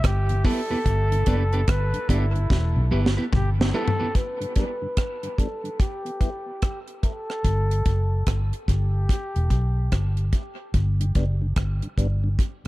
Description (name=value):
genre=dub reggae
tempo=73 BPM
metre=4/4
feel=swing 62% on 16ths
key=unclear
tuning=A4 = 440 Hz
part: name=warm flugelhorn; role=melody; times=0.0-10.3 s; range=E4 to B4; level=-31 LUFS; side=equal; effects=low-pass filter, dub echo
part: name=vintage muted fingered electric bass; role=bass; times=0.0-12.4 s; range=E1 to B1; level=-22 LUFS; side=equal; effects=none
part: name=deep reggae drum kit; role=drums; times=0.0-12.7 s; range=hi-hat, kick drum, rim click, snare drum, toms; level=-23 LUFS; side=equal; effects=none
part: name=mellow tonewheel organ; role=accompaniment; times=0.3-12.7 s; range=E2 to E4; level=-34 LUFS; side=left 1 dB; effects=slow rotary speaker, high-pass filter, low-pass filter
part: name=electric guitar at the edge of break-up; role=accompaniment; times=0.4-4.1 s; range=B3 to B4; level=-31 LUFS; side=right 3 dB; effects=low-pass filter, dub echo
room=light reverb, small room ambience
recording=dark, warm production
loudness=-21 LUFS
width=side -18 dB against mid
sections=0.0-4.2 A section; 4.2-12.7 B section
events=drum fill 2.5-4.2; break 4.2-12.7; filter sweep 4.2-12.7; filter sweep on tonewheel organ 4.2-10.7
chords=0.0 Em; 0.9 G; 2.5 Em; 4.2 G; 5.8 Em; 7.4 G; 9.1 Em; 10.7 G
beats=0.04 | 0.86 1.68 2.50 3.33 | 4.15 4.97 5.80 6.62 | 7.45 8.27 9.09 9.92 | 10.74 11.56 12.39